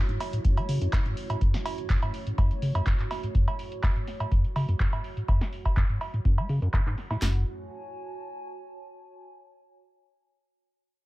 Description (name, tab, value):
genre	acid house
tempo	124 BPM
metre	4/4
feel	straight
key	F# minor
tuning	A4 = 440 Hz
part	dark analog pad	sustained chords	0.0-7.4 s	A3 to F#5	-44 LUFS	right 3 dB	chorus, sidechain pumping
part	deep acid bass	riff	0.0-7.4 s	F#2 to A3	-29 LUFS	equal	overdrive, digital delay
part	warbly tape-like pad	texture	0.0-9.1 s	F#4 to A5	-42 LUFS	right 2 dB	chorus, built-in reverb, sidechain pumping
part	electro analog drum machine	drums	0.1-7.2 s	cowbell, handclaps, hi-hat, snare drum	-35 LUFS	right 2 dB	low-pass filter on hats, low-pass filter on perc, low-pass filter on snare
part	electro analog drum machine	drums	0.4-7.3 s	handclaps, kick drum, snare drum	-25 LUFS	equal	none
part	saturated sub bass	bass	7.2-7.4 s	F#1	-28 LUFS	equal	tube saturation, sidechain pumping
room	digital ambience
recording	none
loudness	-24 LUFS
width	side -19 dB against mid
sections	0.0-7.2 A section; 7.2-9.2 B section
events	fade-out on ambient pad 0.0-7.2; filter sweep on drum 0.0-7.2; filter sweep on analog synth pad 0.0-7.2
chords	0.0 F#m7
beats	0.45 0.93 | 1.41 1.90 2.38 2.87 | 3.35 3.83 4.32 4.80 | 5.28 5.77 6.25 6.74 | 7.22 7.70 8.19 8.67